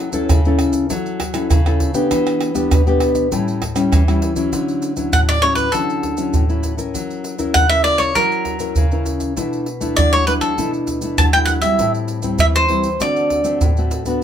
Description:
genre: samba and choro.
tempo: 99 BPM.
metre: 4/4.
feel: straight.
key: D major.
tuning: A4 = 440 Hz.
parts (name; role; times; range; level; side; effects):
nylon-string guitar; accompaniment; 0.0-14.2 s; A2 to Bb4; -20 LUFS; left 2 dB; none.
maracas, surdo, pandeiro and tamborim; percussion; 0.1-14.2 s; none; -18 LUFS; right 1 dB; none.
cavaquinho; melody; 5.1-13.6 s; A4 to A5; -16 LUFS; equal; none.
room: wet small room reverb, RT60 0.5 s.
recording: band playing live in one room.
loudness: -15 LUFS.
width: side -9 dB against mid.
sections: 0.0-4.5 A section; 4.5-14.2 B section.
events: none.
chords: 0.0 F#m7; 2.1 Em7; 3.3 A7; 4.5 Dmaj9; 6.9 F#7; 9.4 Bm7; 11.8 Am7; 13.0 D7.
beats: 0.29 0.90 1.50 | 2.11 2.71 3.32 3.92 | 4.53 5.13 5.74 6.34 | 6.95 7.55 8.16 8.76 | 9.37 9.97 10.58 11.19 | 11.79 12.40 13.01 13.62 | 14.22.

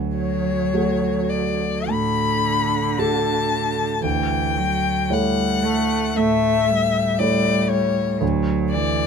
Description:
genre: classical, slow romantic movement for piano trio.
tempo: 51-59 BPM.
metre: 4/4.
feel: rubato.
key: D major.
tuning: A4 = 440 Hz.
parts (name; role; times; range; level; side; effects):
rich cello; second line; 0.0-9.1 s; D3 to A3; -24 LUFS; right 3 dB; none.
dark grand piano; accompaniment; 0.0-9.1 s; D2 to C#5; -22 LUFS; right 2 dB; none.
rich violin; melody; 0.2-9.1 s; C#5 to B5; -22 LUFS; left 8 dB; none.
room: moderate small room reverb, RT60 0.5 s.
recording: none.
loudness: -18 LUFS.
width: side -6 dB against mid.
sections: 0.0-9.1 A section.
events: none.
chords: 0.0 D; 4.0 A7/D; 8.2 D.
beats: 0.74 1.89 2.97 | 4.04 5.11 6.17 7.20 | 8.22.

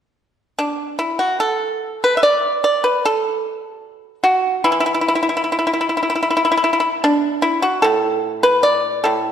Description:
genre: chinese traditional, Chinese solo plucked strings.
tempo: 74 BPM.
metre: 4/4.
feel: rubato.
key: A zhi mode.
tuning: A4 = 440 Hz.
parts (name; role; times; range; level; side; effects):
pipa; solo; 0.6-9.3 s; A2 to E5; -15 LUFS; equal; none.
room: wet scoring stage reverb, RT60 1.7 s.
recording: none.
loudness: -15 LUFS.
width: side -8 dB against mid.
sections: 0.0-1.4 A section; 1.4-9.3 B section.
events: none.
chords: none.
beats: 0.58 | 1.41 2.25 3.07 3.87 | 4.66 5.47 6.28 7.07 | 7.86 8.66.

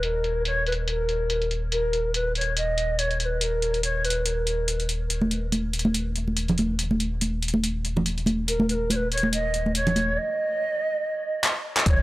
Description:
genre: deep dubstep.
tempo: 142 BPM.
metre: 4/4.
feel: swing 56% on 16ths, half-time.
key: unclear.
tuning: A4 = 440 Hz.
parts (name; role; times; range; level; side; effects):
mellow hollow shakuhachi; melody; 0.0-4.9, 8.5-12.0 s; Bb4 to Eb5; -26 LUFS; right 1 dB; dub echo.
dark detuned saw bass; bass; 0.0-12.0 s; Eb1; -28 LUFS; equal; tube saturation.
deep house drum kit; drums; 0.0-12.0 s; handclaps, hi-hat; -27 LUFS; equal; low-pass filter on hats, low-pass filter on snare, low-pass filter on room.
congas; percussion; 5.2-10.1 s; none; -25 LUFS; right 1 dB; none.
electronic kick drum; drums; 11.9-12.0 s; none; -19 LUFS; equal; none.
room: light reverb.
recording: dry, gritty hardware recording.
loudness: -23 LUFS.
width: side -18 dB against mid.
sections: 0.0-11.9 A section.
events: drum fill 11.4-11.9.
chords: 0.0 Eb5.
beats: | 0.03 0.45 0.88 1.30 | 1.72 2.14 2.57 2.99 | 3.41 3.83 4.26 4.68 | 5.10 5.52 5.95 6.37 | 6.79 7.21 7.64 8.06 | 8.48 8.90 9.33 9.75 | 10.17 10.60 11.02 11.44 | 11.86.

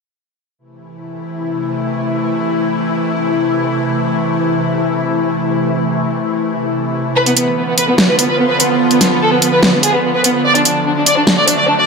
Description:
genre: heavy wobble dubstep.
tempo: 146 BPM.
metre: 4/4.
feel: half-time.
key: A minor.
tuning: A4 = 441 Hz.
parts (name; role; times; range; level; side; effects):
evolving wavetable pad; sustained chords; 1.0-11.9 s; C3 to F#4; -16 LUFS; equal; ensemble chorus, built-in reverb.
warm studio violin section; melody; 7.2-11.8 s; B3 to D5; -13 LUFS; equal; tape echo.
dubstep drum kit; drums; 7.3-11.6 s; hi-hat, snare drum; -13 LUFS; equal; none.
room: moderate plate reverb, RT60 1.2 s.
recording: none.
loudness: -12 LUFS.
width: side -4 dB against mid.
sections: 0.6-11.9 A section.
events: none.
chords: 0.6 Am; 7.2 Bdim; 10.4 D.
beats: | 0.58 1.00 1.41 1.82 | 2.23 2.64 3.05 3.46 | 3.87 4.28 4.70 5.11 | 5.52 5.93 6.34 6.75 | 7.16 7.57 7.98 8.39 | 8.80 9.21 9.63 10.04 | 10.45 10.86 11.27 11.68.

